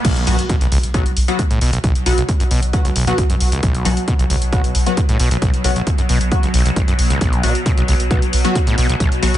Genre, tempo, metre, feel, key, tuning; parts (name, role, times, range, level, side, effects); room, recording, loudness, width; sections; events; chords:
driving peak-time techno; 134 BPM; 4/4; straight; A4 = 437 Hz
overdriven acid bass; riff; 0.0-9.4 s; B1 to B2; -21 LUFS; equal; distortion, sidechain pumping, tape echo
swarming drone; drone; 1.2-9.4 s; B2 to F#3; -26 LUFS; equal; built-in reverb, phaser, sidechain pumping
electronic kick drum; drums; 0.0-9.1 s; -18 LUFS; equal
punchy analog drum machine; drums; 0.0-9.4 s; crash cymbal, hi-hat; -26 LUFS; left 1 dB; sidechain pumping on hats, sidechain pumping on cymbals
riser and impact; sound effects; 0.0-1.8 s; -25 LUFS; right 1 dB
saturated sub bass; bass; 0.2-9.3 s; B1; -20 LUFS; equal; overdrive, sidechain pumping, low-pass filter
rave stab; stabs; 0.3-9.3 s; F#3 to F#4; -23 LUFS; left 2 dB; chorus, built-in reverb, sidechain pumping, tape echo
light reverb; nothing above 10.7 kHz; -14 LUFS; side -13 dB against mid
0.0-9.4 A section
drop 0.0-9.4; impact 0.0-1.8
0.0 B5